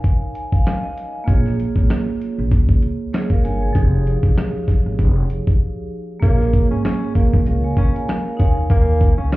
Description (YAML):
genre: hip hop, boom-bap hip-hop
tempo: 97 BPM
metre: 4/4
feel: swing 56% on 16ths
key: Bb dorian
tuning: A4 = 440 Hz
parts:
  - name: vibraphone with hard mallets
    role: accompaniment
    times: 0.0-9.4 s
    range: F3 to Bb5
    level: -24 LUFS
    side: right 2 dB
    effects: cassette tape, high-pass filter, low-pass filter
  - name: dusty soul sampler-style drum kit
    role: drums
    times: 0.0-9.4 s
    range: hi-hat, kick drum, rim click, snare drum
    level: -17 LUFS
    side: equal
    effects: none
  - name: upright bass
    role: bass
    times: 1.3-9.3 s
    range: F1 to Eb2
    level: -18 LUFS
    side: equal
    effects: none
  - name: breathy tenor saxophone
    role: melody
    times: 6.2-9.4 s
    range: Bb3 to Db4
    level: -25 LUFS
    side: right 1 dB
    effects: high-pass filter, low-pass filter
room: little or no reverb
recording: heard muffled through a wall, club reverb, EQ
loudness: -15 LUFS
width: side -19 dB against mid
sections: 0.0-6.2 A section; 6.2-9.4 B section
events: break 0.0-1.3, 5.6-6.2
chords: 0.0 Eb9sus4; 1.3 Bbm7; 3.8 Fm9; 6.2 Bbm7; 8.4 Eb9sus4